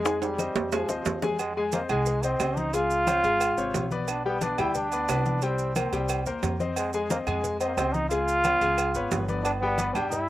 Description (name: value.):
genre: latin, salsa.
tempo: 179 BPM.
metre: 4/4.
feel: straight.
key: F minor.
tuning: A4 = 440 Hz.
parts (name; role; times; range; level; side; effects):
brilliant trombone; melody; 0.0-10.3 s; F3 to F4; -28 LUFS; right 1 dB; none.
clear grand piano; accompaniment; 0.0-10.2 s; C3 to Ab5; -30 LUFS; left 4 dB; slapback echo.
upright bass; bass; 0.0-10.3 s; G1 to G2; -32 LUFS; right 1 dB; none.
bongos and cowbell; percussion; 0.1-10.3 s; none; -37 LUFS; left 6 dB; none.
congas; percussion; 0.1-10.3 s; none; -35 LUFS; left 2 dB; none.
maracas; percussion; 0.1-10.3 s; none; -40 LUFS; right 8 dB; none.
timbales and agogo bells; percussion; 0.1-10.1 s; none; -32 LUFS; right 6 dB; none.
claves; percussion; 0.4-10.1 s; none; -41 LUFS; right 9 dB; none.
room: light reverb.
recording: recorded outdoors, with no room sound.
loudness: -24 LUFS.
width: side -14 dB against mid.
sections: 0.0-1.4 A section; 1.4-10.3 B section.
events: drum fill 0.1-1.4.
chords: 0.1 Fm7; 2.7 Dbmaj7; 4.1 G/B; 5.4 C5; 6.1 C7; 6.8 Fm7; 8.1 Db7; 9.4 G.